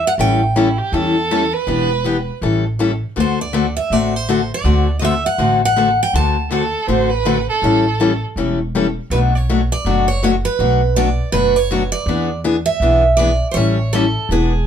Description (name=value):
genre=acoustic string swing (jazz manouche)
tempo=162 BPM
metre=4/4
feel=swing 61% on 8ths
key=A mixolydian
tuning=A4 = 440 Hz
part: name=picked steel-string acoustic guitar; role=melody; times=0.0-14.7 s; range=G#4 to A5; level=-18 LUFS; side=right 3 dB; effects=none
part: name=upright bass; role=bass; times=0.0-14.7 s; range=E1 to E2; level=-20 LUFS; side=right 1 dB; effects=none
part: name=picked steel-string acoustic guitar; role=accompaniment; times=0.2-14.5 s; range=B2 to A4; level=-18 LUFS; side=left 4 dB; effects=none
part: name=warm violin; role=second line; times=0.6-2.3, 6.5-8.2 s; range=E4 to C5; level=-20 LUFS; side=right 6 dB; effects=none
room=light reverb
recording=band playing live in one room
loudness=-14 LUFS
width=side -8 dB against mid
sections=0.0-14.7 A section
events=none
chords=0.0 A7; 1.7 Em7; 2.4 A7; 3.2 D7; 7.6 A7; 9.1 Bm7; 12.1 E7; 13.6 A7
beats=| 0.19 0.56 0.93 1.30 | 1.68 2.05 2.42 2.79 | 3.17 3.54 3.91 4.28 | 4.65 5.03 5.40 5.77 | 6.14 6.51 6.88 7.25 | 7.63 8.00 8.37 8.74 | 9.11 9.48 9.85 10.22 | 10.59 10.96 11.33 11.70 | 12.07 12.44 12.81 13.18 | 13.55 13.93 14.29 14.67